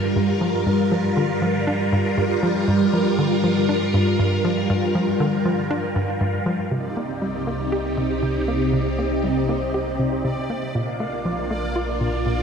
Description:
ambient; 119 BPM; 4/4; straight; A4 = 445 Hz
phased string machine; sustained chords; 0.0-12.4 s; G2 to Bb4; -21 LUFS; equal; ensemble chorus, phaser
hollow square pluck; riff; 0.2-12.4 s; G2 to G4; -24 LUFS; equal; chorus, analog delay
round analog bass; bass; 6.7-12.4 s; Bb1 to C2; -30 LUFS; equal
bubbling stepped-filter texture; texture; 6.7-12.4 s; D5; -34 LUFS; right 2 dB; chorus, built-in reverb
wet cathedral reverb, RT60 5.4 s; in a vast, echoing space; -19 LUFS; side -6 dB against mid
0.0-6.7 A section; 6.7-12.4 B section
0.0 Gm7; 6.7 Cm; 10.7 Bb

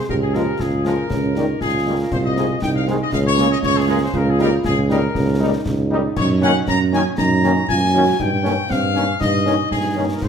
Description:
military-style march for wind band; 118 BPM; 2/4; straight; A4 = 440 Hz
mellow trumpet section; melody; 0.0-10.3 s; Ab4 to Bb5; -22 LUFS; left 4 dB
dark euphonium; second line; 0.0-10.3 s; Bb3 to G4; -24 LUFS; right 4 dB
mellow tuba; bass; 0.1-10.3 s; C2 to Ab2; -19 LUFS; right 2 dB
concert bass drum, concert snare drum and clash cymbals; drums; 0.1-10.3 s; -28 LUFS; left 2 dB
mellow French horn section; accompaniment; 0.3-10.1 s; G3 to F4; -27 LUFS; left 5 dB
mellow trombone section; sustained chords; 0.3-10.0 s; Eb3 to Eb4; -27 LUFS; equal
wet large studio reverb, RT60 1.2 s; faint mains hum; -16 LUFS; side -7 dB against mid
0.0-10.3 A section
0.1 Bbm7/Db; 1.1 Eb7/Db; 2.1 Ab/C; 3.1 Bbm7/Db; 4.1 Eb7/Db; 6.2 Ebm7/Gb; 8.2 Eb7/G

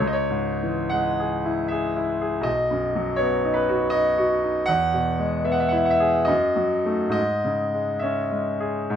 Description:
classical, romantic nocturne for solo piano; 61-82 BPM; 3/4; rubato; C# minor; A4 = 440 Hz
bright concert grand piano; solo; 0.0-9.0 s; B1 to F#5; -20 LUFS; equal
light reverb; close, detailed microphones; -20 LUFS; side -9 dB against mid
0.0-9.0 A section
0.0 C#m; 2.5 B; 4.7 E; 6.3 D#dim/F#; 7.2 C#m/G#

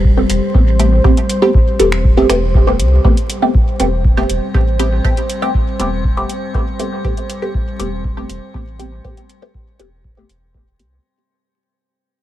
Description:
dub techno; 120 BPM; 4/4; straight; A minor; A4 = 442 Hz
deep dark ambient pad; sustained chords; 0.0-11.0 s; G3 to C5; -22 LUFS; left 1 dB; chorus, built-in reverb, sidechain pumping
soft dub sub bass; bass; 0.0-11.0 s; E1 to C2; -17 LUFS; equal; sidechain pumping
electronic kick drum; drums; 0.0-10.6 s; -14 LUFS; equal
filtered dub chord stab; stabs; 0.2-10.9 s; A3 to G4; -18 LUFS; right 1 dB; phaser, sidechain pumping, dub echo
booming analog drum machine; drums; 0.3-10.9 s; finger snaps, hi-hat; -27 LUFS; equal; dub echo
metallic inharmonic drone; texture; 3.7-11.1 s; C4 to C5; -33 LUFS; left 1 dB; chorus, built-in reverb, sidechain pumping
digital ambience; vinyl crackle; -12 LUFS; side -13 dB against mid
0.0-3.0 A section; 3.0-11.0 B section
fade-out 3.0-11.0; filter sweep on synth stab 3.0-11.0
0.0 Am9

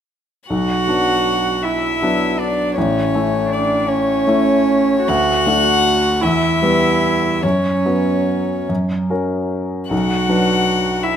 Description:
classical, slow romantic movement for piano trio; 47-54 BPM (dotted quarters); 6/8; rubato; B minor; A4 = 440 Hz
rich violin; melody; 0.5-11.2 s; C#5 to F#5; -20 LUFS; left 5 dB
rich cello; second line; 0.5-11.2 s; C#4 to F#4; -20 LUFS; right 6 dB
clear grand piano; accompaniment; 0.5-11.2 s; A1 to B4; -18 LUFS; left 1 dB
moderate recital hall reverb, RT60 1.4 s; close, detailed microphones; -14 LUFS; side -9 dB against mid
0.5-11.2 A section
0.5 Bm; 2.8 A; 5.1 D; 6.2 Em; 7.4 F#sus4; 8.7 F#; 9.9 Bm

